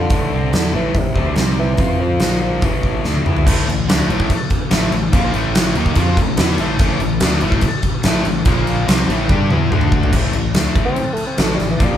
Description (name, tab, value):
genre	hard rock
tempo	144 BPM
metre	4/4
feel	straight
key	A minor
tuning	A4 = 442 Hz
part	mellow bassoon	melody	0.0-3.1, 10.9-12.0 s	C3 to C4	-22 LUFS	equal	none
part	heavy high-gain guitar	riff	0.0-12.0 s	A2 to G4	-23 LUFS	left 6 dB	distortion
part	overdriven semi-hollow guitar	riff	0.0-12.0 s	A2 to G4	-26 LUFS	right 5 dB	none
part	fuzz fingered electric bass	bass	0.0-12.0 s	A1 to G2	-22 LUFS	equal	overdrive
part	huge arena drum kit	drums	0.1-11.9 s	crash cymbal, hi-hat, kick drum, snare drum, toms	-16 LUFS	equal	none
part	distorted electric guitar	riff	3.5-10.1 s	A2 to G4	-25 LUFS	right 1 dB	overdrive
room	moderate studio reverb, RT60 0.6 s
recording	band playing live in one room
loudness	-14 LUFS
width	side -10 dB against mid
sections	0.0-3.5 A section; 3.5-10.1 B section; 10.1-12.0 C section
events	drum fill 3.1-3.5, 9.3-10.1; bassoon solo 10.1-12.0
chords	0.1 Am; 1.4 C5; 1.8 F5; 2.2 Bb5; 2.6 A5; 3.5 Am; 8.5 Bb5; 8.9 Am; 9.7 D5; 10.1 Am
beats	| 0.11 0.53 0.95 1.37 | 1.79 2.21 2.63 3.05 | 3.47 3.89 4.30 4.72 | 5.14 5.56 5.97 6.39 | 6.81 7.22 7.64 8.05 | 8.47 8.89 9.30 9.72 | 10.13 10.55 10.97 11.39 | 11.80